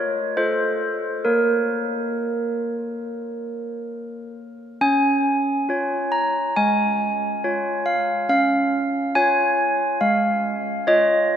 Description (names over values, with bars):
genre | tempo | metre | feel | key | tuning
classical, tune for handbells | 69 BPM | 4/4 | straight | Bb minor, Db major from 4.8 s | A4 = 440 Hz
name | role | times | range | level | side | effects
handbells | solo | 0.0-11.4 s | Ab3 to Bb5 | -19 LUFS | equal | none
room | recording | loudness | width
wet cathedral reverb, RT60 5.2 s | minimal, uncompressed stereo recording | -19 LUFS | side -9 dB against mid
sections
0.0-4.8 A section; 4.8-11.4 B section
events
none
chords
0.4 F7; 1.2 Bbm; 4.8 Db